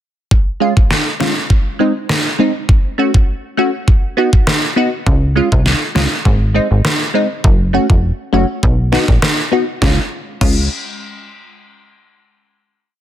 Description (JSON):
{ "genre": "dancehall", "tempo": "101 BPM", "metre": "4/4", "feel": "straight", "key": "Db major", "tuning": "A4 = 439 Hz", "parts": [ { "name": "pop drum kit", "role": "drums", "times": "0.3-10.6 s", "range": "crash cymbal, kick drum, rim click, snare drum", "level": "-14 LUFS", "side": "equal", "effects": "none" }, { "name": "wavetable chord stab", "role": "accompaniment", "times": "0.6-10.7 s", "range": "Ab3 to Gb4", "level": "-17 LUFS", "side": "equal", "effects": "none" }, { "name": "plucky analog bass", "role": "bass", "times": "5.1-10.7 s", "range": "F1 to Db2", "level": "-14 LUFS", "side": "equal", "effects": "none" } ], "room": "digital ambience", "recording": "dense, heavily limited modern master", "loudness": "-12 LUFS", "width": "side -11 dB against mid", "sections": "0.3-9.8 verse; 9.8-12.2 final chord", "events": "none", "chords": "0.3 Db; 1.5 Ab; 2.7 Gbm; 3.9 Cb; 5.1 Db; 6.3 Ab; 7.4 Gbm; 8.6 Cb; 9.8 Db" }